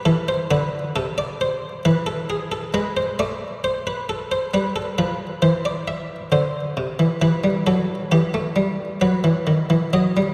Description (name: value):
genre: classical, baroque-style two-part invention for harpsichord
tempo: 67 BPM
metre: 4/4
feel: straight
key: A minor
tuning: A4 = 439 Hz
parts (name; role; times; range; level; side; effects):
- buff-stop harpsichord; solo; 0.0-10.3 s; C3 to E5; -22 LUFS; equal; none
room: wet church reverb, RT60 3.4 s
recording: recorded in a church or concert hall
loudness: -22 LUFS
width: mono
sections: 0.0-10.3 A section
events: none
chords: 0.1 Am; 1.8 E7; 3.6 Am; 5.4 Cadd9; 7.2 Em; 9.0 B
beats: | 0.06 0.95 1.85 2.74 | 3.64 4.54 5.43 6.32 | 7.22 8.12 9.02 9.93